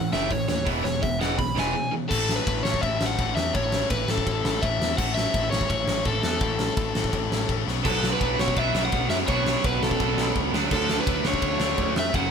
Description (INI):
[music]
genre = punk rock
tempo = 168 BPM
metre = 4/4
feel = straight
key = unclear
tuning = A4 = 439 Hz
[part]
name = crunchy overdriven guitar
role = melody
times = 0.0-12.3 s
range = A4 to B5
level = -28 LUFS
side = left 1 dB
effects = none
[part]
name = overdriven semi-hollow guitar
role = riff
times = 0.0-2.1, 7.8-12.3 s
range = F#2 to F#4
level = -27 LUFS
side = right 7 dB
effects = none
[part]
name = tight distorted guitar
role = riff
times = 0.0-12.3 s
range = E2 to D4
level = -30 LUFS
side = left 11 dB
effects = distortion
[part]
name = growling picked electric bass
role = bass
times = 0.0-12.3 s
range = E1 to F#2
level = -29 LUFS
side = equal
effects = overdrive
[part]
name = big rock drum kit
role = drums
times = 0.1-12.2 s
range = crash cymbal, hi-hat, kick drum, ride cymbal, snare drum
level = -27 LUFS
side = equal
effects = none
[sound]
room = light reverb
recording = band playing live in one room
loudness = -22 LUFS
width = side -6 dB against mid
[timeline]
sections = 0.0-2.1 A section; 2.1-12.3 B section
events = overdriven electric guitar solo 0.0-2.1; break 1.8-2.1; drum fill 7.7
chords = 0.0 A5; 0.7 E; 2.1 A5; 7.7 Bm; 10.5 D